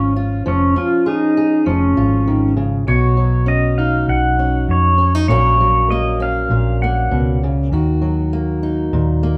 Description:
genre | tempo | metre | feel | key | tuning
acoustic folk duo or small band | 99 BPM | 4/4 | straight | unclear | A4 = 439 Hz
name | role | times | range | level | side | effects
pedal steel guitar | melody | 0.0-7.4 s | C#4 to F#5 | -20 LUFS | equal | none
fingerpicked steel-string acoustic guitar | accompaniment | 0.0-9.4 s | A#2 to A#4 | -22 LUFS | equal | none
hollow-body short-scale fingered electric bass | bass | 0.0-9.4 s | E#1 to E#2 | -20 LUFS | equal | none
room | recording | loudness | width
moderate large studio reverb, RT60 1.1 s | none | -16 LUFS | mono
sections
0.0-2.9 A section; 2.9-9.4 B section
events
none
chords
0.0 C#/E#; 2.9 Badd9; 5.3 F#/A#; 7.7 D#m

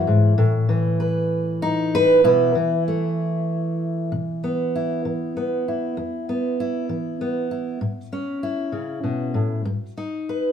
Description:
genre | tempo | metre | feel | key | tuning
folk, solo fingerstyle acoustic guitar | 64 BPM (dotted quarters) | 6/8 | straight | unclear | A4 = 443 Hz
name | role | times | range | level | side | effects
fingerpicked steel-string acoustic guitar | solo | 0.0-10.5 s | E2 to B4 | -20 LUFS | equal | none
room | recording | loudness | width
wet studio reverb, RT60 0.9 s | band playing live in one room | -20 LUFS | side -8 dB against mid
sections
0.0-4.1 A section; 4.1-10.5 B section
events
none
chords
0.4 Asus2; 2.2 B7sus4; 4.1 Bsus4; 6.0 E5; 7.8 A; 9.7 G#m

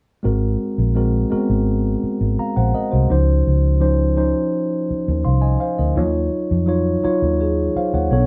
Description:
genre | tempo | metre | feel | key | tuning
soul | 84 BPM | 4/4 | straight | unclear | A4 = 440 Hz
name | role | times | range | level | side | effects
mellow tine electric piano | accompaniment | 0.2-8.3 s | F3 to C6 | -22 LUFS | equal | none
vintage muted fingered electric bass | bass | 0.3-8.3 s | Ab1 to F2 | -20 LUFS | equal | none
room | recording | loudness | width
moderate studio ambience, RT60 0.5 s | band playing live in one room | -19 LUFS | mono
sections
0.2-8.3 A section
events
none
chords
0.2 Ab9; 3.1 Dbmaj9; 6.0 Ebm9

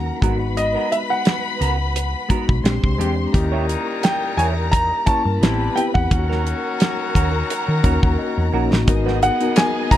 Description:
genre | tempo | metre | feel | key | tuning
lush 1970s-style soul | 87 BPM | 4/4 | swing 54% on 16ths | G# minor | A4 = 440 Hz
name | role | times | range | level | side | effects
warm concert grand piano | melody | 0.0-10.0 s | D#5 to A#5 | -22 LUFS | equal | none
warm studio string section | second line | 0.0-10.0 s | B3 to B#5 | -28 LUFS | left 2 dB | none
reed electric piano | accompaniment | 0.0-10.0 s | G#3 to A#5 | -25 LUFS | left 3 dB | fast tremolo
hollow-body short-scale fingered electric bass | bass | 0.0-10.0 s | G#1 to D#3 | -21 LUFS | equal | none
semi-hollow electric guitar | riff | 0.1-10.0 s | G#3 to C#5 | -29 LUFS | right 10 dB | wah
damped 70s drum kit | drums | 0.2-10.0 s | hi-hat, kick drum, snare drum | -19 LUFS | equal | none
clear horn section | stabs | 3.3-8.5 s | A#2 to G4 | -28 LUFS | left 6 dB | none
group handclap | percussion | 9.6-9.7 s | none | -31 LUFS | left 7 dB | none
room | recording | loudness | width
small room ambience | dark, warm production | -17 LUFS | side -12 dB against mid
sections
0.0-8.9 A section; 8.9-10.0 B section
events
reed electric piano fill 7.5-8.9; drum fill 8.2-8.9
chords
0.2 G#m9; 2.6 A#13; 3.3 D#7b9; 5.4 Am9; 6.1 D#m7; 8.9 G#m7

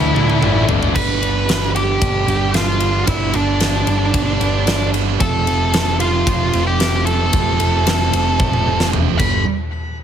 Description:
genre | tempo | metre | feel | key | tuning
quiet-loud alternative rock | 113 BPM | 4/4 | straight | G mixolydian | A4 = 435 Hz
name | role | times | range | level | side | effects
octave-fuzz lead guitar | melody | 0.0-9.4 s | D4 to B5 | -20 LUFS | left 1 dB | distortion, digital delay
phased string machine | sustained chords | 0.0-0.9 s | E4 to G5 | -35 LUFS | left 1 dB | none
biting overdriven guitar | riff | 0.0-0.9 s | D3 to D4 | -22 LUFS | left 13 dB | none
scooped high-gain guitar | riff | 0.0-0.9 s | D3 to D4 | -25 LUFS | left 2 dB | distortion
thick fuzz guitar | riff | 0.0-9.4 s | F2 to D4 | -21 LUFS | right 13 dB | distortion
overdriven picked electric bass | bass | 0.0-9.4 s | F1 to D2 | -20 LUFS | equal | none
huge arena drum kit | drums | 0.2-9.3 s | crash cymbal, kick drum, ride cymbal, snare drum, toms | -20 LUFS | left 1 dB | none
room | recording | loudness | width
light reverb | heavily compressed radio sound | -14 LUFS | side -9 dB against mid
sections
0.9-9.5 A section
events
drum fill 0.0-0.9, 8.4-9.5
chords
0.0 Dsus2; 0.9 G; 5.2 F; 9.2 G; 9.5 N.C.

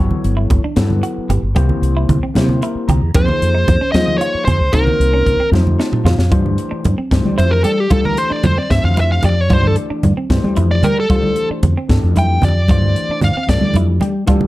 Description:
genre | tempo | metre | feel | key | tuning
electric jazz fusion | 75 BPM (dotted quarters) | 6/8 | straight | unclear | A4 = 442 Hz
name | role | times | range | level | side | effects
overdriven tine electric piano | accompaniment | 0.0-14.5 s | E3 to Bb5 | -23 LUFS | left 3 dB | wide subtle chorus
clean electric guitar | stabs | 0.0-14.5 s | C4 to Ab4 | -27 LUFS | right 3 dB | lush chorus
mellow fretless electric bass | bass | 0.0-14.5 s | G1 to G3 | -15 LUFS | equal | ensemble chorus
congas | percussion | 0.1-14.5 s | none | -20 LUFS | right 1 dB | none
crisp fusion drum kit | drums | 0.2-14.4 s | hi-hat, kick drum, snare drum, toms | -19 LUFS | equal | none
smooth overdriven lead guitar | melody | 3.2-13.7 s | G4 to G5 | -18 LUFS | equal | slapback echo
room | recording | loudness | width
light reverb, small room ambience | dark, warm production | -12 LUFS | side -17 dB against mid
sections
0.0-6.3 A section; 6.3-14.5 B section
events
tine electric piano fill 2.4-3.1, 5.5-6.3; drum fill 5.5-6.3; lead electric guitar solo 6.3-14.5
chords
0.0 Gmaj7; 1.6 C7; 3.1 Fm7; 4.7 Cm7b5; 5.5 F7; 6.3 G13sus4

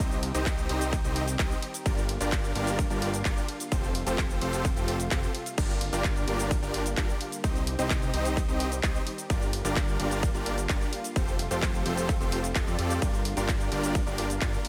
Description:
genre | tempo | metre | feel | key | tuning
EDM, festival progressive house | 129 BPM | 4/4 | straight | G minor | A4 = 440 Hz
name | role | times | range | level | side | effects
lush unison pad | sustained chords | 0.0-14.7 s | C3 to G4 | -40 LUFS | equal | none
supersaw chords | riff | 0.0-14.6 s | C4 to Eb5 | -34 LUFS | equal | sidechain pumping, digital delay
fat analog bass | bass | 0.0-14.6 s | F1 to F2 | -35 LUFS | equal | sidechain pumping
big-room dance drum kit | drums | 0.0-14.7 s | crash cymbal, handclaps, hi-hat, ride cymbal, shaker | -38 LUFS | equal | overdrive
electronic kick drum | drums | 0.0-14.5 s | none | -31 LUFS | equal | overdrive
room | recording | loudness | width
digital ambience | none | -28 LUFS | mono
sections
0.0-14.7 A section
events
none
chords
0.0 Cm; 1.9 Gm7; 3.7 Fadd9; 5.6 Gm7; 7.4 Cm; 9.3 Gm7; 11.2 Fadd9; 13.0 Gm7

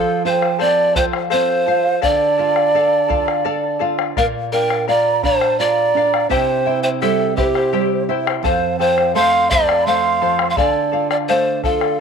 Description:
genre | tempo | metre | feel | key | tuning
andean folk, Andean ensemble | 84 BPM | 3/4 | straight | D minor | A4 = 440 Hz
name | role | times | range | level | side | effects
breathy pan flute | melody | 0.0-12.0 s | G4 to F5 | -17 LUFS | equal | none
breathy mellow large quena | second line | 0.0-12.0 s | C5 to C6 | -22 LUFS | right 10 dB | none
charango | accompaniment | 0.0-12.0 s | E4 to G5 | -22 LUFS | left 13 dB | none
nylon-string guitar | accompaniment | 0.0-12.0 s | F2 to A4 | -24 LUFS | right 11 dB | none
bombo | percussion | 0.4-12.0 s | none | -24 LUFS | left 2 dB | none
room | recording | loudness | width
wet spring reverb, RT60 1.2 s, studio ambience | 1960s-style stereo with parts hard left and right | -14 LUFS | side -6 dB against mid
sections
0.0-12.0 A section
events
none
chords
0.0 F; 2.0 Dm; 4.2 Bb; 6.3 C; 8.4 F; 10.6 Dm

